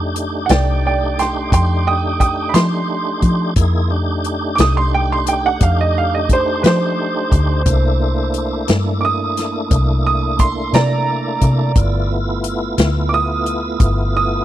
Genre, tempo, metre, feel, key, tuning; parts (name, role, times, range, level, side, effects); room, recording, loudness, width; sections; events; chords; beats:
slow blues; 59 BPM (dotted quarters); 12/8; straight; A4 = 438 Hz
tonewheel organ; sustained chords; 0.0-14.4 s; A3 to Ab4; -22 LUFS; equal; slow rotary speaker, overdrive, chorus vibrato
vintage muted fingered electric bass; bass; 0.0-14.4 s; G1 to F3; -18 LUFS; equal
swinging big-band drum kit; drums; 0.2-14.0 s; hi-hat, kick drum, snare drum; -17 LUFS; left 1 dB
clear upright piano; second line; 0.5-14.4 s; B4 to Eb6; -19 LUFS; right 5 dB
little or no reverb; dry, close 1970s-style studio recording; -14 LUFS; side -12 dB against mid
0.0-14.4 A section
upright piano solo 0.0-14.4
0.0 F13; 7.7 C13; 11.8 G13
0.50 1.52 2.54 | 3.57 4.59 5.62 6.64 | 7.67 8.69 9.71 10.74 | 11.76 12.78 13.81